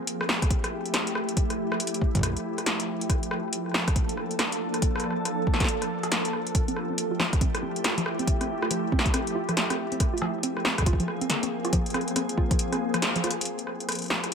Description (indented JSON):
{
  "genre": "IDM",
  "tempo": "139 BPM",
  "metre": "4/4",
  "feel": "swing 62% on 16ths",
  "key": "F major",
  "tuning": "A4 = 442 Hz",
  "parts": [
    { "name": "glassy FM pad", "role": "sustained chords", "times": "0.0-14.3 s", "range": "F3 to A4", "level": "-29 LUFS", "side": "equal", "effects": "ensemble chorus, built-in reverb" },
    { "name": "electro analog drum machine", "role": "drums", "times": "0.1-14.3 s", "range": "hi-hat, rim click, snare drum", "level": "-28 LUFS", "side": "equal", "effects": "none" },
    { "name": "electronic kick drum", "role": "drums", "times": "0.4-12.6 s", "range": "none", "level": "-25 LUFS", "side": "equal", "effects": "none" },
    { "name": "warbly dusty pluck", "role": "arpeggios", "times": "6.7-13.3 s", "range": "F3 to F4", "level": "-31 LUFS", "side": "right 1 dB", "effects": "chorus, cassette tape, ping-pong delay" }
  ],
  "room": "light reverb, digital ambience",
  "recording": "none",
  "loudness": "-24 LUFS",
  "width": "side -6 dB against mid",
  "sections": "0.0-13.5 A section",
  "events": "band accent 13.0; drum fill 13.2",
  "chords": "0.0 Fmaj9; 3.1 Bbmaj7; 6.5 Fmaj9; 10.0 Ab69; 13.5 Fmaj9"
}